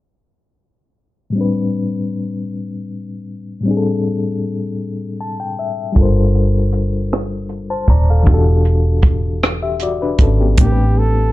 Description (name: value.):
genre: slow six-eight R&B.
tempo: 52 BPM (dotted quarters).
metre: 6/8.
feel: straight.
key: A minor.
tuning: A4 = 440 Hz.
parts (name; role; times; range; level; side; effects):
reed electric piano; accompaniment; 1.3-11.3 s; A2 to Bb5; -19 LUFS; left 3 dB; fast tremolo.
vintage muted fingered electric bass; bass; 6.0-11.3 s; D#1 to A1; -15 LUFS; right 1 dB; none.
compact cocktail drum kit; drums; 6.0-10.8 s; hi-hat, kick drum, rim click; -15 LUFS; equal; none.
breathy flugelhorn; melody; 10.6-11.3 s; G4 to A4; -22 LUFS; right 1 dB; none.
room: little or no reverb.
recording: dark, warm production, low-pass filter.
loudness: -14 LUFS.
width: side -17 dB against mid.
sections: 1.3-10.6 A section.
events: filter sweep 1.3-10.6; reed electric piano fill 4.8-6.0.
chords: 1.3 Am11; 6.0 Gm11; 8.3 Em11; 10.6 Am11.